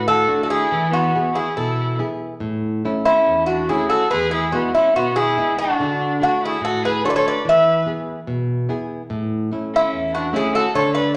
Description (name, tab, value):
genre	greek folk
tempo	144 BPM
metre	4/4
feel	straight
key	A major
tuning	A4 = 436 Hz
part	Greek bouzouki	melody	0.0-11.2 s	E4 to E5	-20 LUFS	equal	none
part	warm violin	second line	0.0-11.1 s	B3 to B4	-27 LUFS	equal	none
part	nylon-string guitar	accompaniment	0.0-11.1 s	E2 to G#4	-26 LUFS	equal	none
room	wet large studio reverb, RT60 1.1 s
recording	none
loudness	-20 LUFS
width	mono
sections	0.0-2.4 A section; 2.4-11.2 B section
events	speeding up 0.0-11.2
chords	0.0 D; 0.7 E; 2.4 A; 4.1 E; 5.8 D; 7.5 E; 9.1 A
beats	0.28 | 0.71 1.14 1.57 1.99 | 2.42 2.85 3.27 3.69 | 4.12 4.54 4.96 5.38 | 5.79 6.21 6.63 7.04 | 7.46 7.87 8.28 8.69 | 9.10 9.51 9.92 10.33 | 10.73 11.14